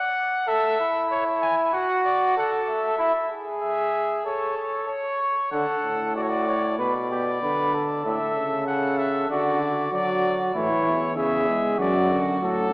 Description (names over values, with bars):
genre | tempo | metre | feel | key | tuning
classical, imitative canzona for brass ensemble | 96 BPM | 4/4 | straight | D major | A4 = 440 Hz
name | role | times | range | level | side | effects
clear trumpet | melody | 0.0-12.7 s | A4 to G#5 | -26 LUFS | left 1 dB | none
warm flugelhorn | second line | 0.5-12.7 s | E4 to C#5 | -24 LUFS | equal | none
warm trombone | accompaniment | 5.5-12.7 s | A2 to G#3 | -26 LUFS | equal | none
dark bass trombone | bass | 10.5-12.7 s | E2 to A2 | -26 LUFS | equal | none
room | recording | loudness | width
wet concert hall reverb, RT60 2.3 s | small speaker sound | -21 LUFS | side -23 dB against mid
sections
0.0-5.5 A section; 5.5-12.7 B section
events
none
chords
0.5 A5; 1.7 D/F#; 3.0 E; 4.3 A; 5.5 D; 6.8 G/B (rootless); 8.1 A; 9.3 D; 10.5 A (rootless); 11.8 D/F#